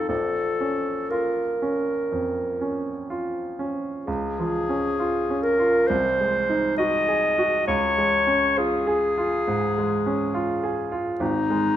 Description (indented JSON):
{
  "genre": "classical, romantic duo for clarinet and grand piano",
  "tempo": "58-71 BPM",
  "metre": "4/4",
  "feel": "rubato",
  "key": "Bb minor, Db major from 4.1 s",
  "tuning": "A4 = 440 Hz",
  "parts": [
    { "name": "clear clarinet", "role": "melody", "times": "0.0-11.8 s", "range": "Eb4 to Eb5", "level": "-23 LUFS", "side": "left 1 dB", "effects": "none" },
    { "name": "bright grand piano", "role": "accompaniment", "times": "0.0-11.8 s", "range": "Ab1 to Ab4", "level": "-26 LUFS", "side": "right 2 dB", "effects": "none" }
  ],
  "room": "wet recital hall reverb, RT60 1.4 s",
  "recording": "minimal, uncompressed stereo recording",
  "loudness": "-21 LUFS",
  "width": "side -11 dB against mid",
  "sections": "0.0-4.1 A section; 4.1-11.8 B section",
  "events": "none",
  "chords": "0.1 Bbm; 4.1 Db; 5.9 Ab7/C; 7.7 Db; 11.2 Ab5"
}